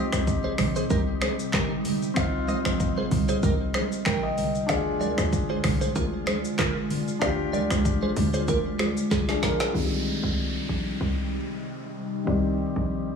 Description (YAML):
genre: afrobeats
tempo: 95 BPM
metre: 4/4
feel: swing 55% on 16ths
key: C minor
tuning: A4 = 442 Hz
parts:
  - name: dark baby grand piano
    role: accompaniment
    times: 0.0-13.2 s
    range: Eb3 to G5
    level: -31 LUFS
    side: left 5 dB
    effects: low-pass filter
  - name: glassy FM pad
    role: sustained chords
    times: 0.0-13.2 s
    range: C3 to F4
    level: -30 LUFS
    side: right 1 dB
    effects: ensemble chorus, built-in reverb, low-pass filter
  - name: direct-recorded clean electric guitar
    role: riff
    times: 0.0-9.3 s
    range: F4 to F5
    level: -32 LUFS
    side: right 4 dB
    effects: analog chorus, low-pass filter, digital delay
  - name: short 808-style bass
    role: bass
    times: 0.1-13.1 s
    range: Bb1 to D2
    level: -29 LUFS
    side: equal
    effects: none
  - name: afro-pop drum kit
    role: drums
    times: 0.1-9.7 s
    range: finger snaps, handclaps, hi-hat, kick drum, rim click, shaker, snare drum, toms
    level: -28 LUFS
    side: equal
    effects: overdrive
  - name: congas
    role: percussion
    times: 0.4-9.6 s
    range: none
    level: -32 LUFS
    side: right 2 dB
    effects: none
  - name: downlifter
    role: sound effects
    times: 9.7-13.2 s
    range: none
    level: -36 LUFS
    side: right 1 dB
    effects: none
room: light reverb, digital ambience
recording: studio reverb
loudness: -23 LUFS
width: side -6 dB against mid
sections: 0.0-9.7 A section; 9.7-13.2 B section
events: grand piano fill 3.7-4.7; drum fill 9.1-9.7; filter sweep 9.7-13.2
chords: 0.0 Cm; 4.7 Ddim; 9.7 Cm